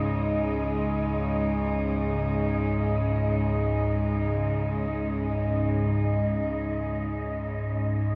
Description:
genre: dark ambient drone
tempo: free time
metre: none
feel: none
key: unclear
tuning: A4 = 440 Hz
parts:
  - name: warm chamber cello section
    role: sustained chords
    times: 0.0-8.2 s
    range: C#3 to D#4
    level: -31 LUFS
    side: equal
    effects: none
  - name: organ-like drone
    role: drone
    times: 0.0-8.2 s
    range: C#2 to G#2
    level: -30 LUFS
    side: equal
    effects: ensemble chorus, built-in reverb
  - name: wind-like tuned noise texture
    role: texture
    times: 0.0-8.2 s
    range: D#5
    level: -37 LUFS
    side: equal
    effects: built-in reverb
room: wet huge ambient reverb, RT60 8.3 s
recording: worn, warbling old tape, cassette tape, warbly pitch drift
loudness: -27 LUFS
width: mono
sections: 0.0-8.2 A section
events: none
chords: 0.0 C#5

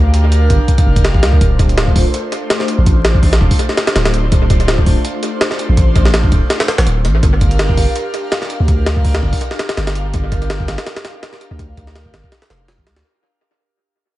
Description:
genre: drum and bass, jungle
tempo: 165 BPM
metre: 4/4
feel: swing 55% on 16ths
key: unclear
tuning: A4 = 444 Hz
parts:
  - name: airy breathy pad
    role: sustained chords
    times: 0.0-13.0 s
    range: A3 to F5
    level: -22 LUFS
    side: equal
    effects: chorus, phaser
  - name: long sustained 808-style bass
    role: bass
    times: 0.0-13.0 s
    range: D1 to D2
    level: -14 LUFS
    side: equal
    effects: none
  - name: jungle sampler-style drum kit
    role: drums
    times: 0.1-13.0 s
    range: hi-hat, kick drum, snare drum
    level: -14 LUFS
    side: equal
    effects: analog delay
room: little or no reverb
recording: echo-heavy mix, vinyl crackle, nothing above 10.7 kHz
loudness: -11 LUFS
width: side -16 dB against mid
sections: 0.0-13.0 A section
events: drop 0.0-13.0; fade-out 7.2-13.0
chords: 0.0 Gm7; 1.4 Dm7; 7.2 Gm7

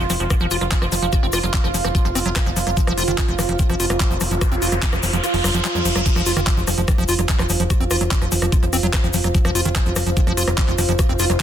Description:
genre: psychedelic trance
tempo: 146 BPM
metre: 4/4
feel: straight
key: unclear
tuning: A4 = 440 Hz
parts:
  - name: bubbling stepped-filter texture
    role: sustained chords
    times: 0.0-6.1 s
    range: F4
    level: -27 LUFS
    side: right 6 dB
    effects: chorus, built-in reverb, sidechain pumping
  - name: liquid acid bass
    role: riff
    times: 0.0-11.4 s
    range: Eb3 to Gb4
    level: -24 LUFS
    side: equal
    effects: chorus, auto-pan, sidechain pumping, digital delay
  - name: plucky analog bass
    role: bass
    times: 0.0-11.4 s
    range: F1 to F2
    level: -23 LUFS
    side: equal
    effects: none
  - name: egg shaker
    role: percussion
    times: 0.0-11.4 s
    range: none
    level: -30 LUFS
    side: left 4 dB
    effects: none
  - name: warbly tape-like pad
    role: texture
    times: 0.1-11.4 s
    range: F4 to F5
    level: -27 LUFS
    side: right 1 dB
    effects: chorus, built-in reverb, sidechain pumping
  - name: garage drum kit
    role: drums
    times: 0.1-11.4 s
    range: crash cymbal, handclaps, hi-hat, rim click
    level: -25 LUFS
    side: equal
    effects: soft clipping on snare
  - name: electronic kick drum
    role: drums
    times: 0.3-11.4 s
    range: none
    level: -19 LUFS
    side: equal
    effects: none
  - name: riser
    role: sound effects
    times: 3.8-6.1 s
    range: none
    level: -27 LUFS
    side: equal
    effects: none
room: light reverb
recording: dense, heavily limited modern master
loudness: -16 LUFS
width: side -10 dB against mid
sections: 0.0-6.1 A section; 6.1-11.4 B section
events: filter sweep on acid bass 0.0-6.1; riser 3.8-6.1; kick drops out 5.2-6.1; drop 6.1-11.4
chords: 0.0 F5

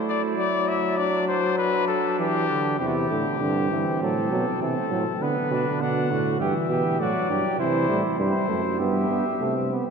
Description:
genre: classical, imitative canzona for brass ensemble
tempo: 100 BPM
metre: 4/4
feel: straight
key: unclear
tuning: A4 = 438 Hz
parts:
  - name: warm flugelhorn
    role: second line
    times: 0.0-9.7 s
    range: B3 to G4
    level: -29 LUFS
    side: right 4 dB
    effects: none
  - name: clear trombone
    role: accompaniment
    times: 0.0-9.9 s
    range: C3 to B3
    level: -26 LUFS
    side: right 2 dB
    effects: none
  - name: warm trumpet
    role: melody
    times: 0.1-9.7 s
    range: F#4 to F#5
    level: -27 LUFS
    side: left 7 dB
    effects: none
  - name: warm bass trombone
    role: bass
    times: 2.8-9.8 s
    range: E2 to D3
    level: -27 LUFS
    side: right 2 dB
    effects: none
room: wet cathedral reverb, RT60 5.0 s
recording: dark, warm production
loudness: -21 LUFS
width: side -6 dB against mid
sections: 0.0-2.8 A section; 2.8-9.9 B section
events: none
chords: 0.0 D/F#; 1.6 G; 2.8 C/E; 4.0 F#dim/A; 5.2 Bm; 6.4 Em/G; 7.6 C

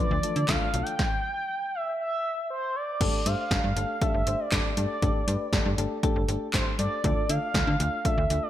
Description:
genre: synth-pop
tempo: 119 BPM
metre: 4/4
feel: straight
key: unclear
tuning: A4 = 441 Hz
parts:
  - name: expressive synth lead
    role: melody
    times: 0.0-8.5 s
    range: C5 to G5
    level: -30 LUFS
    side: right 1 dB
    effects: chorus, ping-pong delay
  - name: soft electric-piano-like synth keys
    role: accompaniment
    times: 0.0-8.5 s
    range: A3 to C5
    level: -32 LUFS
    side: left 4 dB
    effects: chorus
  - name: chorused pulse-width pad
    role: sustained chords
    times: 0.0-1.0 s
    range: D3 to A3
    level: -38 LUFS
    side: left 2 dB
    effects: none
  - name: slap-like FM bass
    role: bass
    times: 0.1-8.4 s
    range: G1 to D3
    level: -28 LUFS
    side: equal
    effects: none
  - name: punchy analog drum machine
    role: drums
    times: 0.2-8.4 s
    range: crash cymbal, handclaps, hi-hat, kick drum, snare drum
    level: -27 LUFS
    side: equal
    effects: gated reverb
room: moderate plate reverb, RT60 1.7 s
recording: bright 1980s-style digital production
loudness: -24 LUFS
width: side -12 dB against mid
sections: 0.0-3.0 A section; 3.0-8.5 B section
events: stop 1.0-3.0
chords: 0.0 Dmadd9; 1.0 N.C.; 3.0 Gsus2; 7.0 Dm

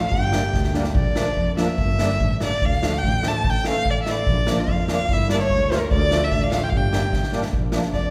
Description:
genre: klezmer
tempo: 146 BPM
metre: 2/4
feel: straight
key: G dorian sharp4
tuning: A4 = 439 Hz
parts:
  - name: dark violin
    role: melody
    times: 0.0-8.1 s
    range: Bb4 to A5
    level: -27 LUFS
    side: equal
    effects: none
  - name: warm trombone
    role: second line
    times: 0.0-0.7, 4.6-8.1 s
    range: E4 to D5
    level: -32 LUFS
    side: equal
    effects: none
  - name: dark double bass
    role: bass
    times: 0.1-8.1 s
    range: G1 to F2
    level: -26 LUFS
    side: equal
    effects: none
  - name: street-band drum kit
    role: drums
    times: 0.1-8.0 s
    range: kick drum, snare drum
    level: -26 LUFS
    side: equal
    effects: none
  - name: musette accordion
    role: accompaniment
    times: 0.3-7.8 s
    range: E3 to F4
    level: -30 LUFS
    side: equal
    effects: none
room: wet recital hall reverb, RT60 1.6 s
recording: recorded in a church or concert hall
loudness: -21 LUFS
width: mono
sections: 1.0-7.5 A section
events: speeding up 0.0-8.1; drum fill 0.5-1.0, 7.1-7.5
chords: 0.1 Gm; 1.0 Bb; 1.8 Gm; 2.6 Dm; 3.4 A5; 4.3 Bb; 5.1 Gm; 5.9 Dm; 6.7 Gm; 7.5 Bb

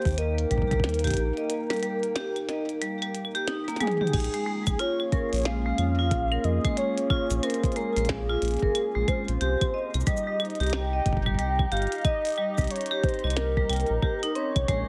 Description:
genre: IDM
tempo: 91 BPM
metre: 4/4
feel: swing 62% on 16ths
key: Bb dorian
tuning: A4 = 438 Hz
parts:
  - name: warm velvety synth lead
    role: melody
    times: 0.0-14.9 s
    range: Ab4 to G5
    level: -32 LUFS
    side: equal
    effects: chorus, digital delay
  - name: warbly tape-like pad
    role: sustained chords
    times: 0.0-14.9 s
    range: Bb3 to G5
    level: -37 LUFS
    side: equal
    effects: chorus, built-in reverb, vintage 12-bit sampler grit
  - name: vibraphone with hard mallets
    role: arpeggios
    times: 0.0-14.9 s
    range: G3 to G5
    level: -35 LUFS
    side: equal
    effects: digital delay
  - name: glitchy drum kit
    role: drums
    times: 0.0-14.8 s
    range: claves, crash cymbal, hi-hat, shaker, snare drum, toms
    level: -35 LUFS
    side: equal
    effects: none
  - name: round analog bass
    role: bass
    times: 0.1-14.8 s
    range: G1 to F2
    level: -30 LUFS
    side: equal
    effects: none
  - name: electronic kick drum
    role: drums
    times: 0.1-14.8 s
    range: none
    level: -30 LUFS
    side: equal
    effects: none
room: light reverb, digital ambience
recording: none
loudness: -27 LUFS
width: mono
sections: 0.0-4.1 A section; 4.1-14.9 B section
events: filter sweep on vibraphone 0.0-4.1; break 1.5-4.1; drum fill 3.6-4.1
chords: 0.0 Eb; 4.1 Bbm7; 9.4 Cm

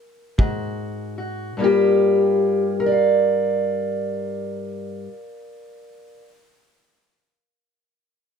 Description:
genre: acoustic country blues, solo or duo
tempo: 49 BPM (dotted quarters)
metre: 12/8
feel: straight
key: G minor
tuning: A4 = 443 Hz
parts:
  - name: fingerpicked steel-string acoustic guitar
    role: melody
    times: 0.0-6.3 s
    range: G2 to F5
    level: -19 LUFS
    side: equal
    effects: none
  - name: kick drum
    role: drums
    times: 0.4-0.6 s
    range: none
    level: -19 LUFS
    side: equal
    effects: none
room: light reverb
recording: dark, warm production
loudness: -18 LUFS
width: side -6 dB against mid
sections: 0.0-1.6 A section; 1.6-6.5 B section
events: slowing down 0.0-1.6; stop 0.0-0.4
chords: 0.4 F#add9/G#; 1.6 Gm7

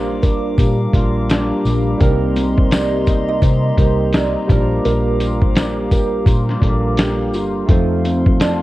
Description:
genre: indie pop, bedroom pop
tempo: 84 BPM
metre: 4/4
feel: swing 60% on 16ths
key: Bb major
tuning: A4 = 441 Hz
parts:
  - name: barky tine electric piano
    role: accompaniment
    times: 0.0-8.6 s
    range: G3 to C5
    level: -21 LUFS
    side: right 1 dB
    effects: overdrive
  - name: electric guitar through a small old amp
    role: accompaniment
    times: 0.0-8.6 s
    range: Bb2 to D5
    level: -24 LUFS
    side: left 4 dB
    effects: ensemble chorus, warbly pitch drift
  - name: hollow soft pad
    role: sustained chords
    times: 0.0-8.6 s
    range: G4 to D6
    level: -27 LUFS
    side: left 1 dB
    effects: chorus
  - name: vintage muted fingered electric bass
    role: bass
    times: 0.0-8.6 s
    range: G1 to C3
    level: -20 LUFS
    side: equal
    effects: none
  - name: kalimba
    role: second line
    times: 0.2-8.6 s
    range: A4 to Eb5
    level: -24 LUFS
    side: right 5 dB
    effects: analog chorus, analog delay
  - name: lo-fi sampler-style drum kit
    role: drums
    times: 0.2-8.6 s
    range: hi-hat, kick drum, snare drum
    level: -16 LUFS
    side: equal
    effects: none
  - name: tambourine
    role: percussion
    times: 0.2-8.6 s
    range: none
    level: -41 LUFS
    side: left 5 dB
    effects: none
room: digital ambience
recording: worn, warbling old tape, cassette tape, warbly pitch drift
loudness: -14 LUFS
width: side -17 dB against mid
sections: 0.0-8.6 A section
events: none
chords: 0.0 Bb6; 2.0 Cm7; 4.5 Bb6; 7.7 F7

